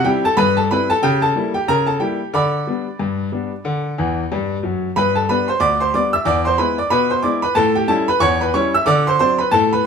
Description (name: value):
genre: ragtime piano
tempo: 92 BPM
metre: 2/4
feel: swing 59% on 16ths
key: G major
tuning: A4 = 440 Hz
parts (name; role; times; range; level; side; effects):
- clear grand piano; solo; 0.0-9.8 s; D2 to E6; -15 LUFS; equal; none
room: moderate studio reverb, RT60 0.8 s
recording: minimal, uncompressed stereo recording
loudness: -15 LUFS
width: side -6 dB against mid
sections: 0.0-9.9 A section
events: grand piano fill 4.0-5.0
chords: 0.0 C; 1.0 C#dim7; 2.3 G/D; 3.7 D; 5.0 G; 6.3 E7; 7.6 A7; 8.9 D7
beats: 0.38 | 1.03 1.68 | 2.34 3.00 | 3.65 4.31 | 4.96 5.61 | 6.27 6.92 | 7.57 8.22 | 8.87 9.52